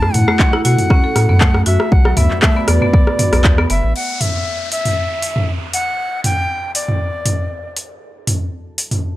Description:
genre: afro house.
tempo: 118 BPM.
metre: 4/4.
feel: swing 54% on 16ths.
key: unclear.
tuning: A4 = 440 Hz.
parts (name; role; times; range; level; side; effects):
breathy bright jazz flute; melody; 0.0-7.7 s; D5 to A5; -21 LUFS; left 2 dB; analog delay.
dark analog pad; sustained chords; 0.0-9.2 s; B3 to A5; -27 LUFS; equal; chorus, phaser, sidechain pumping.
buzzing marimba with hard mallets; arpeggios; 0.0-3.8 s; F#3 to A4; -21 LUFS; right 1 dB; sidechain pumping, analog delay.
warm sub bass; bass; 0.0-3.9 s; F#1 to B2; -14 LUFS; equal; sidechain pumping.
deep house drum kit; drums; 0.0-9.0 s; crash cymbal, handclaps, hi-hat, rim click, toms; -18 LUFS; equal; overdrive.
electronic kick drum; drums; 0.4-3.6 s; none; -13 LUFS; equal; overdrive.
downlifter; sound effects; 4.0-8.0 s; none; -28 LUFS; left 1 dB; none.
room: little or no reverb.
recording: dry, gritty hardware recording.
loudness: -13 LUFS.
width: side -16 dB against mid.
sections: 0.0-4.0 A section; 4.0-9.2 B section.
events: none.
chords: 0.0 F#m7; 1.9 Bm; 4.0 Dsus2; 6.0 Em7; 8.0 F#m7.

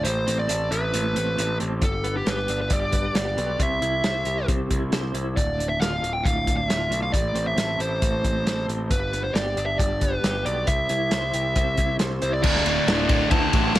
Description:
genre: quiet-loud alternative rock.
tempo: 136 BPM.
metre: 4/4.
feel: straight.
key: D dorian.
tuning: A4 = 442 Hz.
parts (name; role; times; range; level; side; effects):
fuzz lead guitar; melody; 0.0-13.8 s; G4 to A5; -26 LUFS; equal; distortion.
twelve-string electric guitar; arpeggios; 0.0-12.4 s; D2 to C5; -30 LUFS; equal; tremolo.
overdriven picked electric bass; bass; 0.0-13.8 s; D1 to D2; -28 LUFS; equal; none.
loose indie drum kit; drums; 0.0-13.8 s; crash cymbal, hi-hat, kick drum, ride cymbal, snare drum; -25 LUFS; equal; none.
overdriven electric guitar; riff; 12.4-13.8 s; D2 to D3; -22 LUFS; equal; none.
room: light reverb.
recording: none.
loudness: -21 LUFS.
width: side -15 dB against mid.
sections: 0.0-12.4 A section; 12.4-13.8 B section.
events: none.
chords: 0.1 Amadd9; 1.8 G; 3.6 C; 5.4 Dm; 7.1 Am; 8.9 G; 10.7 C; 12.4 D5.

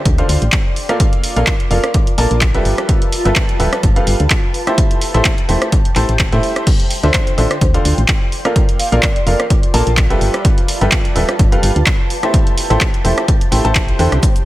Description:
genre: piano house.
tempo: 127 BPM.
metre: 4/4.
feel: swing 55% on 16ths.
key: unclear.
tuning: A4 = 440 Hz.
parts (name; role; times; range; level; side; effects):
granular cloud pad; texture; 0.0-14.4 s; F4 to C6; -25 LUFS; equal; built-in reverb, sidechain pumping.
solid FM bass; bass; 0.1-14.2 s; D1 to A2; -15 LUFS; equal; sidechain pumping.
electronic kick drum; drums; 0.1-14.3 s; none; -14 LUFS; equal; none.
punchy analog drum machine; drums; 0.1-14.4 s; cabasa, crash cymbal, handclaps, hi-hat, rim click; -20 LUFS; equal; none.
clear upright piano; riff; 0.2-14.1 s; D3 to A5; -19 LUFS; right 1 dB; sidechain pumping, tape echo.
vibraphone with medium mallets; melody; 7.0-9.4 s; C5 to F5; -25 LUFS; left 1 dB; vintage 12-bit sampler grit, tape echo.
room: light reverb.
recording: none.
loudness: -12 LUFS.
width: side -16 dB against mid.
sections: 0.0-14.4 A section.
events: none.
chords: 0.0 Dm7; 1.0 Bbmaj7; 2.7 G13; 4.8 Am7; 6.7 Dm9; 8.6 Bbmaj7; 10.2 G13; 12.3 Am7.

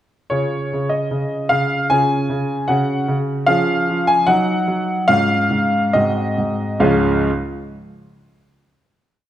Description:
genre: classical-period piano sonatina.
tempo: 67-77 BPM.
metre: 2/4.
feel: straight.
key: Db major.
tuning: A4 = 440 Hz.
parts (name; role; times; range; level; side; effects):
clear grand piano; solo; 0.3-7.3 s; Db2 to Ab5; -16 LUFS; equal; none.
room: moderate recital hall reverb, RT60 1.5 s.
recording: dark, warm production.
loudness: -16 LUFS.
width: side -12 dB against mid.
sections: 0.3-6.8 A section; 6.8-8.5 final chord.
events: slowing down 2.7-6.8.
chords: 0.3 Db; 2.7 Gb5/Db; 3.5 Db/F; 4.3 Ebm/Gb; 5.1 Db/Ab; 5.9 Ab7; 6.8 Db.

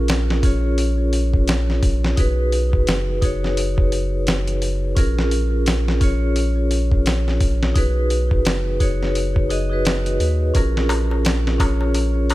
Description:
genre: trip hop.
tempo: 86 BPM.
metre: 4/4.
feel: swing 59% on 16ths.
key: Bb phrygian.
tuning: A4 = 440 Hz.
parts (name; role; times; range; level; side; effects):
vibraphone with medium hard mallets; accompaniment; 0.0-12.3 s; Db4 to D#5; -23 LUFS; equal; tremolo, vintage 12-bit sampler grit, tape echo.
soft dub sub bass; bass; 0.0-12.3 s; F#1 to D#2; -20 LUFS; equal; none.
dusty soul sampler-style drum kit; drums; 0.1-12.3 s; hi-hat, kick drum, snare drum; -20 LUFS; equal; studio reverb.
darbuka; percussion; 10.6-12.3 s; none; -28 LUFS; left 2 dB; none.
room: small room ambience.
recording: none.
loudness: -17 LUFS.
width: side -17 dB against mid.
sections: 0.0-12.3 A section.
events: none.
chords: 0.0 Bbm7; 2.2 B6; 5.0 Bbm7; 7.8 B6; 10.5 Bbm7.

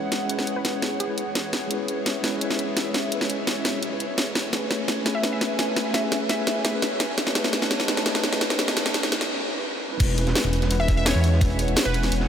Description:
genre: liquid drum and bass.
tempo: 170 BPM.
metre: 4/4.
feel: straight.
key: E major.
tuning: A4 = 441 Hz.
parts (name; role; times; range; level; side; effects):
mellow tine electric piano; accompaniment; 0.0-12.3 s; G#3 to B4; -29 LUFS; equal; medium stereo tremolo, low-pass filter, tape echo.
airy breathy pad; sustained chords; 0.0-12.3 s; G#4 to A5; -32 LUFS; left 1 dB; chorus, sidechain pumping.
swelling detuned saw bass; bass; 0.0-12.3 s; E1 to A2; -29 LUFS; equal; high-pass filter.
drum and bass drum kit; drums; 0.1-12.2 s; crash cymbal, hi-hat, snare drum; -24 LUFS; equal; none.
glassy wavetable pluck; melody; 0.6-1.4, 5.1-6.8, 10.8-12.1 s; G#4 to E5; -32 LUFS; equal; chorus, cassette tape, analog delay.
crunchy breakbeat drum kit; drums; 10.0-12.3 s; hi-hat, snare drum; -34 LUFS; equal; high-pass filter on hats, high-pass filter on snare, high-pass filter on room.
electronic kick drum; drums; 10.0-11.5 s; none; -22 LUFS; equal; none.
room: wet huge ambient reverb, RT60 8.0 s.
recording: dreamy mix soaked in reverb, high-pass filter.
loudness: -21 LUFS.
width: side -9 dB against mid.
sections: 0.0-10.0 A section; 10.0-12.3 B section.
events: build-up 0.0-10.0; drum fill 0.0-9.3; filter sweep on synth pluck 0.0-10.0; break 9.3-10.0; drop 10.0-12.3.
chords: 0.0 E6; 4.4 Amaj9; 7.2 B9; 10.0 E6.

